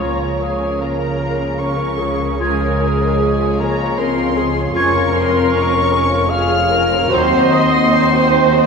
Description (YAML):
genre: classical, slow romantic movement for symphony orchestra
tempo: 76 BPM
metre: 3/4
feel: rubato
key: unclear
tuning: A4 = 440 Hz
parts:
  - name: muted chamber violin section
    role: melody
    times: 0.0-8.7 s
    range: Ab5 to F6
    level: -23 LUFS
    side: left 4 dB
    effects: none
  - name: clear clarinet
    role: second line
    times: 0.0-7.4 s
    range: F4 to Gb4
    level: -28 LUFS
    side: equal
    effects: none
  - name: dark cor anglais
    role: second line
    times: 0.0-8.7 s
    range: Ab4 to F5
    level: -21 LUFS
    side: right 2 dB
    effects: none
  - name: hollow small flute group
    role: second line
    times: 0.0-7.5 s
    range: C6 to Ab6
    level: -25 LUFS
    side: right 2 dB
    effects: none
  - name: muted studio violin section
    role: second line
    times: 0.0-8.7 s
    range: Bb3 to Eb5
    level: -24 LUFS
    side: left 2 dB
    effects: none
  - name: muted studio viola section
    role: accompaniment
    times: 0.0-8.7 s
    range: Ab4 to Eb5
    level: -20 LUFS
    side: equal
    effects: none
  - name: bright trombone section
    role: sustained chords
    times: 0.0-7.4 s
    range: F3 to Db4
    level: -25 LUFS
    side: right 2 dB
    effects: none
  - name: mellow French horn section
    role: sustained chords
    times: 0.0-8.7 s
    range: Ab3 to F4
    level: -21 LUFS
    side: left 2 dB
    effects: none
  - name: muted studio cello section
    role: bass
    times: 0.0-8.7 s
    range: Eb2 to Db3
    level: -23 LUFS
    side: right 1 dB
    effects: none
  - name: muted studio double bass section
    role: bass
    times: 0.0-8.7 s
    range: F1 to Eb2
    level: -24 LUFS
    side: right 2 dB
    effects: none
room: wet recital hall reverb, RT60 1.5 s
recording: recorded in a church or concert hall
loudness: -13 LUFS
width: side -5 dB against mid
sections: 0.0-8.7 A section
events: none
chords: 0.0 Bbm/Db; 2.4 Db; 4.8 Db/F; 7.1 Cdim/Eb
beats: | 0.02 0.81 1.60 | 2.40 3.21 3.99 | 4.76 5.53 6.32 | 7.12 7.94